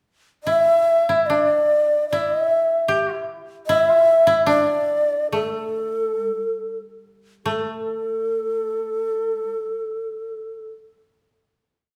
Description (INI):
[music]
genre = japanese traditional, Japanese chamber music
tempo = 46-78 BPM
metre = 2/4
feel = rubato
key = unclear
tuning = A4 = 443 Hz
[part]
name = breathy bright long shakuhachi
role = melody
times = 0.4-10.7 s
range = A4 to E5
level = -21 LUFS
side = equal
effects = none
[part]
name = koto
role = second line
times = 0.5-10.7 s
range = A3 to G4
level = -28 LUFS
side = equal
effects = none
[sound]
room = wet recital hall reverb, RT60 1.4 s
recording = recorded in a church or concert hall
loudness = -20 LUFS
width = mono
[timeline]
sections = 0.4-7.4 A section; 7.4-12.0 final note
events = slowing down 3.7-7.4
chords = none